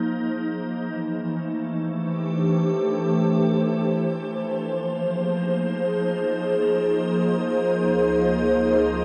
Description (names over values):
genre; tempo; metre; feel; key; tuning
ambient; free time; none; none; unclear; A4 = 443 Hz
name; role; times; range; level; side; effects
soft additive organ-like pad; solo; 0.0-9.0 s; Db2 to C5; -23 LUFS; equal; ensemble chorus, built-in reverb, tape echo
room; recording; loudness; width
wet huge ambient reverb, RT60 7.7 s; none; -23 LUFS; mono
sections
0.0-9.0 A section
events
none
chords
0.0 Fm7; 0.7 D5; 4.2 Bb5; 7.7 Db6